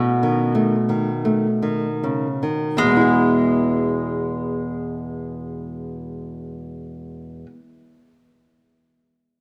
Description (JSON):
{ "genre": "romantic duo for mandolin and classical guitar", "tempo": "36-49 BPM", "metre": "4/4", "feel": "rubato", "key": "E major", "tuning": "A4 = 435 Hz", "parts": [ { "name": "mandolin", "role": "melody", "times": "0.0-7.5 s", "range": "G#3 to C#4", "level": "-28 LUFS", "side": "equal", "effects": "none" }, { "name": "nylon-string guitar", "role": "accompaniment", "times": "0.0-7.7 s", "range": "E2 to G#4", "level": "-22 LUFS", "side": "equal", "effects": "none" } ], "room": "wet lush hall reverb, RT60 3.4 s", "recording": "rough home demo mix", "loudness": "-21 LUFS", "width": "mono", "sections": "0.0-2.8 A section; 2.8-8.4 B section", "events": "slowing down 0.0-2.8", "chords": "0.0 B7; 2.8 E" }